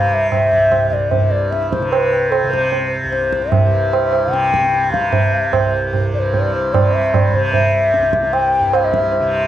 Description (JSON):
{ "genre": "indian classical, Hindustani", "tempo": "150 BPM", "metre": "4/4", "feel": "straight", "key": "unclear", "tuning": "A4 = 440 Hz", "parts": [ { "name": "mellow hollow bansuri", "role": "melody", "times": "0.0-9.4 s", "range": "A4-22c to G5", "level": "-17 LUFS", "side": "left 3 dB", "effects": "cassette tape" }, { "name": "tanpura", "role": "drone", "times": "0.0-9.5 s", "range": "C2 to C3", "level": "-20 LUFS", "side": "right 1 dB", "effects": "cassette tape" }, { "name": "tabla", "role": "percussion", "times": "0.3-9.3 s", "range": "none", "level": "-18 LUFS", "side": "right 4 dB", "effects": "none" } ], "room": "wet small room reverb, RT60 0.5 s", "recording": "home recording on cassette", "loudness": "-13 LUFS", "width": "side -12 dB against mid", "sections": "0.0-9.5 A section", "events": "none", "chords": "none" }